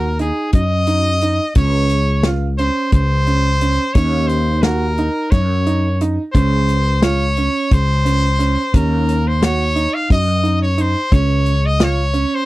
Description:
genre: progressive instrumental, band music in an uneven meter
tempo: 176 BPM (eighths)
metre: 7/8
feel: straight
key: Eb dorian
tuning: A4 = 439 Hz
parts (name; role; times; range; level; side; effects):
- brilliant trumpet; melody; 0.0-12.5 s; Ab4 to F5; -20 LUFS; equal; none
- clear baby grand piano; arpeggios; 0.0-12.5 s; Db4 to Gb4; -22 LUFS; right 4 dB; none
- fretless electric bass; bass; 0.0-12.2 s; Db2 to Gb2; -16 LUFS; equal; ensemble chorus
- warm soul drum kit; drums; 0.2-12.3 s; hi-hat, kick drum, snare drum; -15 LUFS; equal; none
room: little or no reverb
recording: none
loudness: -14 LUFS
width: side -18 dB against mid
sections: 0.0-12.5 A section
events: none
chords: 0.0 Ebm; 1.6 Dbmaj7(no3); 4.0 Ebm7; 6.3 N.C.; 8.7 Ebm7; 11.1 Bbm/Db (rootless)

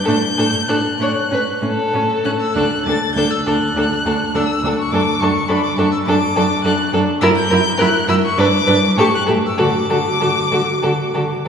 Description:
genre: quick classical-period movement for string quartet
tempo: 96-106 BPM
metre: 4/4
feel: rubato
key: D major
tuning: A4 = 442 Hz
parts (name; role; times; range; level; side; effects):
- warm violin; melody; 0.0-11.4 s; B5 to A6; -20 LUFS; left 4 dB; none
- warm violin; second line; 0.1-11.5 s; A4 to C#5; -20 LUFS; left 1 dB; none
- rich viola; accompaniment; 0.1-11.2 s; C#4 to G4; -20 LUFS; right 1 dB; none
- rich cello; bass; 0.1-11.5 s; D2 to D3; -20 LUFS; right 2 dB; none
room: wet cathedral reverb, RT60 4.4 s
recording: recorded in a church or concert hall, small room ambience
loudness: -14 LUFS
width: side -7 dB against mid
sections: 0.0-11.5 A section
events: none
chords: 0.1 D/A; 1.3 A; 2.6 D; 4.9 D/F#; 7.2 F#7; 8.4 G; 9.0 A7; 9.6 D

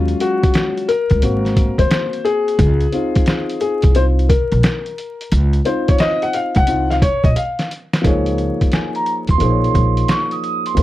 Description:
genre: hip hop, jazz-hop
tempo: 88 BPM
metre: 4/4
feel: swing 66% on 16ths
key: Db major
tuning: A4 = 444 Hz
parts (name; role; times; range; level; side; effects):
- dark upright piano; accompaniment; 0.0-10.8 s; F3 to Gb5; -18 LUFS; left 2 dB; none
- upright bass; bass; 0.0-10.8 s; Ab1 to Eb2; -16 LUFS; equal; none
- trip hop sampler-style drum kit; drums; 0.1-10.8 s; hi-hat, kick drum, snare drum; -17 LUFS; equal; none
- vibraphone with soft mallets; melody; 8.7-10.8 s; Ab5 to Eb6; -20 LUFS; right 5 dB; none
room: little or no reverb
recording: dry, close 1970s-style studio recording, vinyl crackle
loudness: -14 LUFS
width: side -15 dB against mid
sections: 0.0-8.0 A section; 8.0-10.8 B section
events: upright piano solo 0.0-8.0; drum fill 7.4-8.0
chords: 0.0 Ebm11 (rootless); 1.2 Ab9; 2.6 Dbmaj9; 8.0 Dbadd9; 9.4 Bbm11

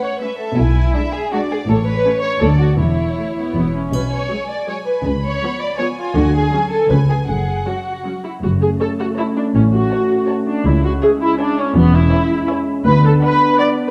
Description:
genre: cinematic, playful, whimsical film cue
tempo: 162 BPM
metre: 3/4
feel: straight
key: A major, F# minor from 3.9 s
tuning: A4 = 442 Hz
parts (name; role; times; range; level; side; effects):
- muted studio violin section; melody; 0.0-13.9 s; C#5 to B5; -33 LUFS; equal; none
- muted studio violin section; second line; 0.0-13.9 s; E4 to F#5; -24 LUFS; equal; none
- muted studio viola section; accompaniment; 0.0-13.9 s; E#3 to D5; -22 LUFS; equal; none
- muted studio cello section; bass; 0.6-13.1 s; C#2 to D3; -21 LUFS; equal; none
- muted studio double bass section; bass; 0.6-13.1 s; E1 to D2; -21 LUFS; equal; none
- triangle; percussion; 3.9-4.6 s; none; -43 LUFS; equal; none
- mellow French horn section; sustained chords; 8.4-13.9 s; G#3 to D4; -22 LUFS; equal; none
room: wet scoring stage reverb, RT60 1.7 s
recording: dark, warm production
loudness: -17 LUFS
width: mono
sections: 0.0-8.4 A section; 8.4-13.9 B section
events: none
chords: 0.0 A; 0.6 E7/B; 1.7 A; 2.4 D; 2.8 A/E (rootless); 3.5 E5; 3.9 Bsus2; 5.1 C#7; 6.2 Dmaj7; 6.9 C#; 7.3 F#5; 8.4 F#m; 9.5 F#m/A; 10.7 C#m; 11.8 C#m/E; 12.9 Bm/D

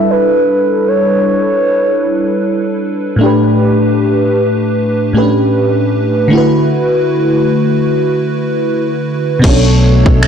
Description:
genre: contemporary R&B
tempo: 77 BPM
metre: 4/4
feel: swing 58% on 16ths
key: unclear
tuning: A4 = 440 Hz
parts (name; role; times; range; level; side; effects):
- hollow clarinet-like synth lead; melody; 0.0-2.8 s; B4 to E5; -14 LUFS; equal; chorus, low-pass filter, digital delay
- FM electric piano with soft pad layer; accompaniment; 0.0-10.3 s; A2 to C#5; -11 LUFS; equal; chorus, low-pass filter
- hollow soft pad; sustained chords; 9.8-10.3 s; B2 to D4; -19 LUFS; left 5 dB; chorus
- fingered electric bass; bass; 9.4-10.3 s; B1; -10 LUFS; equal; none
- trap drum kit; drums; 9.4-10.3 s; crash cymbal, finger snaps, kick drum; -11 LUFS; equal; vintage 12-bit sampler grit, soft clipping on snare
room: moderate scoring stage reverb, RT60 1.9 s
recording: blown-out, overdriven recording, overdrive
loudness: -10 LUFS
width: side -7 dB against mid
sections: 0.0-9.4 A section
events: filter sweep 0.0-9.4; hi-hats muted 9.4-10.3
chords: 0.0 G69; 3.2 A7sus4; 6.3 D6; 9.4 Bm9

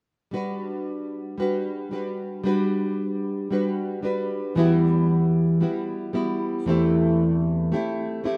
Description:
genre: pop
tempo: 114 BPM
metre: 4/4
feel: swing 55% on 16ths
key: G major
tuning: A4 = 445 Hz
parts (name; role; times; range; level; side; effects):
- nylon-string guitar; accompaniment; 0.3-8.4 s; E2 to B4; -24 LUFS; equal; double-tracked
room: moderate plate reverb, RT60 2.8 s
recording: rough home demo mix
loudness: -24 LUFS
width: mono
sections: 0.3-8.4 A section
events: none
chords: 0.3 Gmaj7; 4.6 Emadd9; 6.7 C6/E

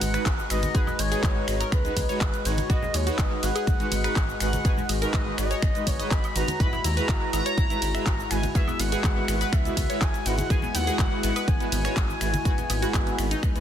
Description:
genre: progressive house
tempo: 123 BPM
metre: 4/4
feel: straight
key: G# minor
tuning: A4 = 440 Hz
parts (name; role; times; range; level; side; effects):
- expressive portamento lead; melody; 0.0-13.6 s; B4 to B5; -31 LUFS; left 1 dB; lush chorus, sidechain pumping, tape echo
- warm analog pad; sustained chords; 0.0-13.6 s; G#3 to A#5; -34 LUFS; left 3 dB; wide subtle chorus, sidechain pumping
- analog pluck; arpeggios; 0.0-13.6 s; G#3 to E5; -34 LUFS; left 1 dB; chorus, phaser, sidechain pumping, ping-pong delay
- dark detuned saw bass; bass; 0.0-13.6 s; G#1 to D#2; -30 LUFS; equal; sidechain pumping
- pop drum kit; drums; 0.0-13.6 s; finger snaps, handclaps, hi-hat, ride cymbal, shaker; -31 LUFS; equal; sidechain pumping on hats, sidechain pumping on perc, sidechain pumping on cymbals, soft clipping on snare
- congas and woodblock; percussion; 0.0-13.5 s; none; -37 LUFS; right 1 dB; none
- soft supersaw; stabs; 0.1-13.6 s; G#3 to B4; -32 LUFS; right 2 dB; sidechain pumping, ping-pong delay
- electronic kick drum; drums; 0.3-13.5 s; none; -25 LUFS; equal; none
room: little or no reverb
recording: dense, heavily limited modern master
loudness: -22 LUFS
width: side -10 dB against mid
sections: 0.0-13.6 A section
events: none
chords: 0.0 G#m7; 6.6 Eadd9/G#

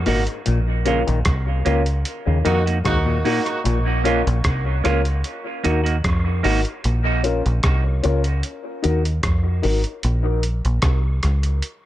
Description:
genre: dub reggae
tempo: 75 BPM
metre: 4/4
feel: straight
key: Bb minor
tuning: A4 = 440 Hz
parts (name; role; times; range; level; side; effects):
- deep dub fingered electric bass; bass; 0.0-11.6 s; Ab1 to F2; -20 LUFS; equal; none
- semi-hollow electric guitar; accompaniment; 0.1-6.6 s; Bb3 to Gb4; -26 LUFS; right 5 dB; dub echo
- auto-wah clav; arpeggios; 0.1-3.8 s; Ab2 to Eb3; -28 LUFS; left 5 dB; overdrive, dub echo
- dark upright piano; stabs; 0.1-9.8 s; Db4 to Bb4; -26 LUFS; left 4 dB; dub echo
- lo-fi sampler-style drum kit; drums; 0.1-11.8 s; hi-hat, kick drum, rim click; -24 LUFS; equal; none
- warm horn section; second line; 2.5-3.6 s; Bb3 to Gb4; -27 LUFS; right 3 dB; dub echo
room: light reverb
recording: echo-heavy mix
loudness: -18 LUFS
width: side -14 dB against mid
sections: 0.0-3.7 A section; 3.7-11.9 A section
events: band accent 0.5-3.7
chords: 0.5 Bbm; 2.1 Ebm; 3.7 Bbm; 5.2 Ebm; 6.8 Bbm; 8.4 Ebm; 10.0 Bbm

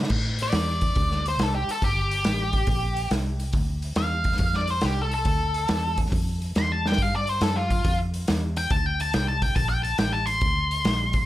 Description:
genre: blues rock power trio and southern rock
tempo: 140 BPM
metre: 4/4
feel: swing 67% on 8ths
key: D minor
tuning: A4 = 440 Hz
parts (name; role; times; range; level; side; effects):
- vintage muted fingered electric bass; bass; 0.0-11.3 s; G1 to A2; -27 LUFS; equal; none
- vintage drum kit; drums; 0.0-11.2 s; crash cymbal, hi-hat, kick drum, snare drum; -26 LUFS; equal; none
- octave-fuzz lead guitar; melody; 0.4-11.3 s; F4 to C6; -26 LUFS; left 1 dB; distortion
room: small room ambience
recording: none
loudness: -22 LUFS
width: side -14 dB against mid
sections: 0.1-11.3 A section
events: lead electric guitar solo 0.0-11.3; drum fill 6.8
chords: 0.1 Dsus2; 1.8 Gmadd9; 3.5 Dm9; 7.0 Gm9; 10.4 D7(no3)

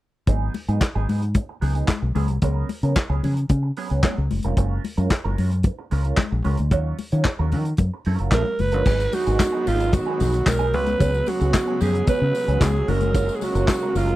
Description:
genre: disco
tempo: 112 BPM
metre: 4/4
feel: straight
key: G# dorian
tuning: A4 = 439 Hz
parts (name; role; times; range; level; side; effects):
- mellow electric guitar; accompaniment; 0.3-14.1 s; F#3 to C#5; -30 LUFS; right 6 dB; wah, wide subtle chorus
- fingered electric bass; bass; 0.3-14.2 s; E#1 to D#3; -22 LUFS; equal; none
- warm soul drum kit; drums; 0.3-14.2 s; crash cymbal, handclaps, hi-hat, kick drum, snare drum; -20 LUFS; equal; none
- congas; percussion; 0.3-14.1 s; none; -30 LUFS; left 8 dB; none
- breathy alto saxophone; melody; 8.3-14.2 s; E#4 to B4; -23 LUFS; right 3 dB; none
- warm studio string section; sustained chords; 8.9-14.2 s; C#3 to B3; -29 LUFS; left 3 dB; none
- tambourine; percussion; 8.9-14.1 s; none; -41 LUFS; left 18 dB; none
room: little or no reverb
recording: dry, close 1970s-style studio recording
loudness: -19 LUFS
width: side -16 dB against mid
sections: 0.3-8.9 A section; 8.9-14.2 B section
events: none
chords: 0.3 G#m7; 2.2 C#7sus4; 4.3 F#maj9; 6.7 D#m9; 8.9 G#m7; 10.7 C#7sus4; 12.9 F#maj9

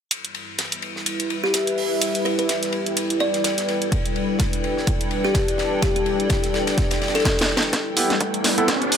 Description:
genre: bass house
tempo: 126 BPM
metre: 4/4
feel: swing 57% on 16ths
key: E minor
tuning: A4 = 440 Hz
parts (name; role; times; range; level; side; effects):
- sweeping resonant pad; sustained chords; 0.1-9.0 s; G3 to B4; -26 LUFS; equal; chorus, sidechain pumping
- damped 70s drum kit; drums; 0.1-7.6 s; hi-hat, ride cymbal, snare drum; -30 LUFS; left 2 dB; high-pass filter on cymbals, high-pass filter on hats, high-pass filter on snare, high-pass filter on room
- garage drum kit; drums; 0.1-9.0 s; hi-hat, snare drum; -22 LUFS; right 1 dB; none
- granular cloud pad; texture; 2.4-9.0 s; E4 to G5; -29 LUFS; equal; built-in reverb, sidechain pumping
- kalimba; melody; 1.4-7.5 s; G4 to D5; -26 LUFS; left 1 dB; tape echo
- electronic kick drum; drums; 3.9-8.8 s; none; -24 LUFS; equal; high-pass filter on kick
- riser; sound effects; 8.1-9.0 s; none; -26 LUFS; right 1 dB; none
- clear grand piano; stabs; 8.0-8.7 s; B3 to A4; -23 LUFS; right 3 dB; sidechain pumping, tape echo
room: light reverb, small room ambience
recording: none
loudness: -19 LUFS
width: side -8 dB against mid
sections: 0.1-7.7 A section; 7.7-9.0 B section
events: fade-in on ambient pad 0.1-7.7; drum fill 7.3-7.7, 7.7-9.0; build-up 7.7-9.0; riser 8.1-9.0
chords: 0.1 Em

